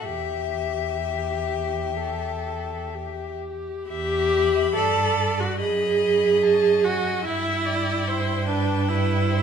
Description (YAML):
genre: classical, slow romantic movement for string quartet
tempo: 61-75 BPM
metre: 4/4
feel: rubato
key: E minor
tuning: A4 = 440 Hz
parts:
  - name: rich violin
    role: melody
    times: 0.0-9.4 s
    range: E5 to B5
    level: -31 LUFS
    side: left 13 dB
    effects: none
  - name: rich violin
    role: second line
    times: 0.0-9.4 s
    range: G4 to E5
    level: -31 LUFS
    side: left 4 dB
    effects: none
  - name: clear viola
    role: accompaniment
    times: 0.0-9.4 s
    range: D4 to A4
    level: -23 LUFS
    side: right 2 dB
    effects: none
  - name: warm cello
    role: bass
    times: 0.0-9.4 s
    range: E2 to G2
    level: -29 LUFS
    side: right 3 dB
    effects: none
room: moderate recital hall reverb, RT60 1.6 s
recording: minimal, uncompressed stereo recording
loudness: -21 LUFS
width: side -7 dB against mid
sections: 0.0-3.9 A section; 3.9-9.4 A section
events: none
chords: 0.0 Em; 5.6 D#dim/F#; 7.2 Em/G